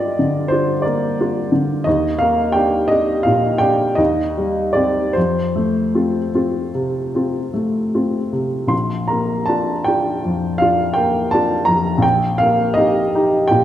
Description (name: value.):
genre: classical, romantic nocturne for solo piano.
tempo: 49-62 BPM (dotted quarters).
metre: 9/8.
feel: rubato.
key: Bb major.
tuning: A4 = 439 Hz.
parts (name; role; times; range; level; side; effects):
clear upright piano; solo; 0.0-13.6 s; Bb1 to C6; -15 LUFS; equal; none.
room: wet scoring stage reverb, RT60 1.9 s.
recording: none.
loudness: -15 LUFS.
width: side -11 dB against mid.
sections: 0.0-13.6 A section.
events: none.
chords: 0.0 Gm7; 1.9 Ebmaj7; 4.0 Cm/Eb; 5.2 F; 8.7 Bb; 12.0 Eb/Bb.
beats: 0.85 | 1.86 2.91 3.99 | 5.16 6.33 7.53 | 8.72 9.86 10.95 | 12.02 13.13.